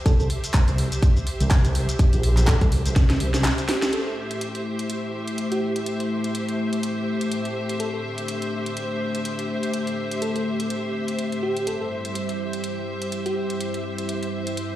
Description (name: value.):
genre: bass house.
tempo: 124 BPM.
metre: 4/4.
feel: swing 57% on 16ths.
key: A minor.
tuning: A4 = 440 Hz.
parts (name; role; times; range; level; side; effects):
rich studio string section; texture; 0.0-14.8 s; A3 to E5; -30 LUFS; right 1 dB; sidechain pumping.
bell-like FM electric piano; melody; 0.1-13.7 s; G4 to A4; -30 LUFS; equal; chorus, vintage 12-bit sampler grit, dub echo.
vowel-sweep wobble bass; bass; 0.1-3.4 s; Bb1 to C2; -21 LUFS; equal; chorus, sidechain pumping.
electronic kick drum; drums; 0.1-3.1 s; none; -17 LUFS; equal; overdrive, small room ambience.
garage drum kit; drums; 0.1-14.7 s; handclaps, hi-hat, shaker, snare drum; -29 LUFS; equal; overdrive, small room ambience.
dark analog pad; sustained chords; 3.9-14.8 s; G3 to C5; -28 LUFS; left 2 dB; chorus, vintage 12-bit sampler grit, sidechain pumping.
room: light reverb, digital ambience.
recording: played on a big sound system in a bare room, large studio reverb.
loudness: -22 LUFS.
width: side -13 dB against mid.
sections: 0.0-3.9 A section; 3.9-14.8 B section.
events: drum fill 3.0-3.9; band accent 3.8.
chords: 0.0 C; 3.9 Am; 11.7 C.